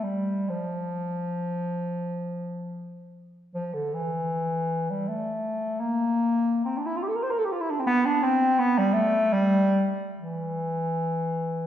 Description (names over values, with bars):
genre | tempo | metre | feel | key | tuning
classical, free, expressive piece for unaccompanied bass clarinet | 44-88 BPM | 3/4 | rubato | unclear | A4 = 439 Hz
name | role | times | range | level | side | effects
mellow bass clarinet | solo | 0.0-11.7 s | D3 to C5 | -24 LUFS | equal | none
room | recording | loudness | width
wet scoring stage reverb, RT60 2.0 s | heard from further back in the room | -24 LUFS | side -10 dB against mid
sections
0.0-3.6 A section; 3.6-11.7 B section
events
none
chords
none